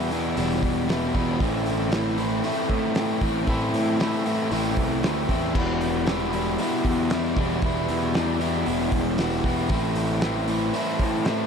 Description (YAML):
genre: indie rock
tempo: 116 BPM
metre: 4/4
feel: straight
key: unclear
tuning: A4 = 440 Hz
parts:
  - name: crunchy overdriven guitar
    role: riff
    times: 0.0-11.5 s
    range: E2 to E4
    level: -24 LUFS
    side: left 1 dB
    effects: none
  - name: fuzz picked electric bass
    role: bass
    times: 0.0-11.5 s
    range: E1 to A2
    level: -28 LUFS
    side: equal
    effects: overdrive
  - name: cloth-damped thuddy drum kit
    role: drums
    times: 0.1-11.4 s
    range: crash cymbal, hi-hat, kick drum, snare drum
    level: -29 LUFS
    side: equal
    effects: none
room: small room ambience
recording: none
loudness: -22 LUFS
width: side -6 dB against mid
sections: 0.0-11.5 A section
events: none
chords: 0.0 Em; 1.4 Am; 5.6 Em; 9.7 Am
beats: 0.37 0.89 | 1.41 1.93 2.45 2.97 | 3.48 4.00 4.52 5.04 | 5.56 6.08 6.60 7.12 | 7.63 8.15 8.67 9.19 | 9.71 10.23 10.74 11.26